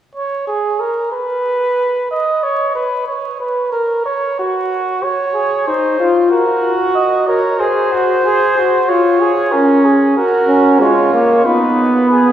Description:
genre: classical, imitative canzona for brass ensemble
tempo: 93 BPM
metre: 4/4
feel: straight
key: F# major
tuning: A4 = 440 Hz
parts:
  - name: dark trumpet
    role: melody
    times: 0.2-12.3 s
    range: F#4 to D#5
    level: -16 LUFS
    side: right 1 dB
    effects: none
  - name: warm flugelhorn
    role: second line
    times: 5.3-12.3 s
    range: C#4 to A#4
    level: -14 LUFS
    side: equal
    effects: none
  - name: clear trombone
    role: accompaniment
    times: 10.5-12.3 s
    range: G#3 to C#4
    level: -11 LUFS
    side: right 2 dB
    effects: none
room: wet church reverb, RT60 3.3 s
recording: heard from further back in the room, vinyl crackle, small room ambience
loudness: -12 LUFS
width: side -10 dB against mid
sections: 0.0-12.3 A section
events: none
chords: 0.0 N.C.; 5.0 C#; 6.3 F#; 7.6 G#; 8.9 C#/E#; 10.2 F#; 11.5 B

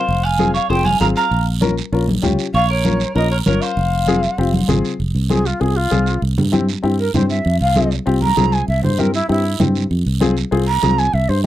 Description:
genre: latin, cumbia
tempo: 195 BPM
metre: 4/4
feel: straight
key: F minor, F harmonic minor from 5.0 s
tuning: A4 = 442 Hz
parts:
  - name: breathy shakuhachi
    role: melody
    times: 0.0-11.4 s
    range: E4 to Bb5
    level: -20 LUFS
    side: right 1 dB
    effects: none
  - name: clean electric guitar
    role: second line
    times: 0.0-4.7 s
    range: Bb4 to F5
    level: -24 LUFS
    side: right 4 dB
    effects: none
  - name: fingered electric bass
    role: bass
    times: 0.1-11.5 s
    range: F1 to G2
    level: -18 LUFS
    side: right 1 dB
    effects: none
  - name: guiro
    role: percussion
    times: 0.1-11.4 s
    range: none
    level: -31 LUFS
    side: right 11 dB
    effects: none
  - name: warm upright piano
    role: accompaniment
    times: 0.4-11.5 s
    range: C4 to Bb4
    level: -21 LUFS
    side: left 5 dB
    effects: none
  - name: congas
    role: percussion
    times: 0.4-11.0 s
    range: none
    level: -21 LUFS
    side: equal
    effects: none
room: little or no reverb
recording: dry, close 1970s-style studio recording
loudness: -14 LUFS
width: side -13 dB against mid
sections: 0.0-5.0 A section; 5.0-11.5 B section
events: shakuhachi solo 5.0-11.5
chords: 0.0 Fm; 1.3 Bbm; 3.8 Fm; 6.2 C; 7.5 Fm; 8.7 C; 9.9 Fm

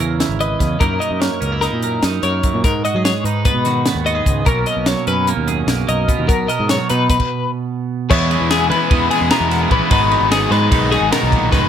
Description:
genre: math rock and midwest emo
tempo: 297 BPM (eighths)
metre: 9/8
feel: straight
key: B major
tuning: A4 = 441 Hz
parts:
  - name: twelve-string electric guitar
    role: accompaniment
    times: 0.0-11.7 s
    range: F#2 to B4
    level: -21 LUFS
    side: right 8 dB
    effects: lush chorus
  - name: growling fingered electric bass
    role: bass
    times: 0.0-11.7 s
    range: E#1 to F#3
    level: -21 LUFS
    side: equal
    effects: overdrive
  - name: crisp fusion drum kit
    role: drums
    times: 0.0-11.6 s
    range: crash cymbal, hi-hat, kick drum, ride cymbal, snare drum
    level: -19 LUFS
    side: equal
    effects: none
  - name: twelve-string electric guitar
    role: arpeggios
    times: 0.4-11.7 s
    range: G#4 to D#5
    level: -19 LUFS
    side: left 7 dB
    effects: tremolo
  - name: overdriven semi-hollow guitar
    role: riff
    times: 8.1-11.7 s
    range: G#2 to E4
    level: -19 LUFS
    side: left 1 dB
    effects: none
room: light reverb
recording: none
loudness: -14 LUFS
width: side -9 dB against mid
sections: 0.0-8.1 A section; 8.1-11.7 B section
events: stop 7.2-8.1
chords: 0.0 C#m7; 0.8 F#6; 2.6 G#m7; 4.5 Bmaj9; 8.1 E6; 9.9 G#m7

